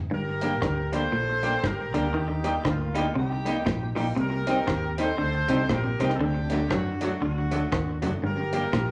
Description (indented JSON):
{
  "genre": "ska",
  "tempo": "118 BPM",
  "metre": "4/4",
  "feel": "swing 61% on 8ths",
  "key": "G minor",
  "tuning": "A4 = 442 Hz",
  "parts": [
    { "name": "clear horn section", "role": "melody", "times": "0.1-8.9 s", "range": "Bb3 to C5", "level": "-33 LUFS", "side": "equal", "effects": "none" },
    { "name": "semi-hollow electric guitar", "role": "riff", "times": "0.1-8.9 s", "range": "F#2 to F#3", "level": "-32 LUFS", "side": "equal", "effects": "tube saturation, tape echo" },
    { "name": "vintage muted fingered electric bass", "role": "bass", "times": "0.1-8.9 s", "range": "F#1 to F#2", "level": "-33 LUFS", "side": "equal", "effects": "none" },
    { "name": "archtop guitar, miked and amplified", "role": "accompaniment", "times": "0.4-8.6 s", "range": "F#3 to G4", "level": "-32 LUFS", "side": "equal", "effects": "none" },
    { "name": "deep reggae drum kit", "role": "drums", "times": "0.4-8.9 s", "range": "hi-hat, kick drum, rim click", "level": "-34 LUFS", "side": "equal", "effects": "tape echo" }
  ],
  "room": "wet large studio reverb, RT60 0.9 s",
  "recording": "none",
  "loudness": "-26 LUFS",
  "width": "mono",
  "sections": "0.1-8.9 A section",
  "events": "none",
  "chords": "0.1 Gm; 2.1 Eb; 6.2 D; 8.2 Gm",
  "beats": "| 0.11 0.62 1.13 1.64 | 2.14 2.65 3.16 3.66 | 4.17 4.68 5.18 5.69 | 6.20 6.70 7.21 7.72 | 8.22 8.73"
}